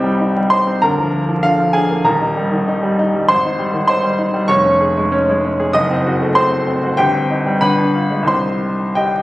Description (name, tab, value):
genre	classical, virtuoso piano study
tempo	97 BPM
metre	2/4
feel	rubato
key	C minor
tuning	A4 = 439 Hz
part	clear baby grand piano	solo	0.0-9.2 s	Eb1 to D#6	-13 LUFS	equal	none
room	moderate recital hall reverb, RT60 1.4 s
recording	recorded on a phone in the room, club reverb, vinyl crackle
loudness	-13 LUFS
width	side -17 dB against mid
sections	0.0-9.2 A section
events	none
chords	0.0 Cm; 0.8 Bb/D; 2.1 Eb; 3.3 Abmaj7; 4.5 Db/F; 5.8 F#dim7; 7.0 Cm/G; 7.6 G7b9; 8.3 Cm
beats	0.20 | 0.82 1.44 | 2.06 2.68 | 3.29 3.90 | 4.51 5.13 | 5.75 6.37 | 6.99 7.62 | 8.29 8.97